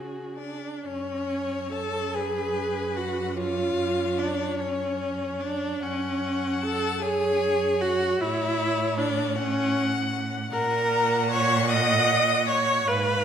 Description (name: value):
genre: classical, slow romantic movement for string quartet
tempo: 40-54 BPM (dotted quarters)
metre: 6/8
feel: rubato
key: F# minor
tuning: A4 = 440 Hz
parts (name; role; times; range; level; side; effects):
- dark violin; second line; 0.0-13.2 s; G#4 to F#5; -32 LUFS; left 4 dB; none
- rich viola; accompaniment; 0.0-13.2 s; C#4 to D#5; -25 LUFS; right 1 dB; none
- clear cello; bass; 0.0-13.2 s; F#2 to C#3; -31 LUFS; right 4 dB; none
- rich violin; melody; 0.4-13.2 s; C#5 to D#6; -32 LUFS; left 9 dB; none
room: wet recital hall reverb, RT60 1.7 s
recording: none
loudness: -23 LUFS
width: side -8 dB against mid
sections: 0.9-13.2 A section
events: none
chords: 0.0 C#5; 0.9 F#5; 8.2 F#m/A; 10.5 F#/A#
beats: | 0.85 2.14 | 3.37 4.59 | 5.82 7.03 | 8.21 9.36 | 10.52 11.71 | 12.88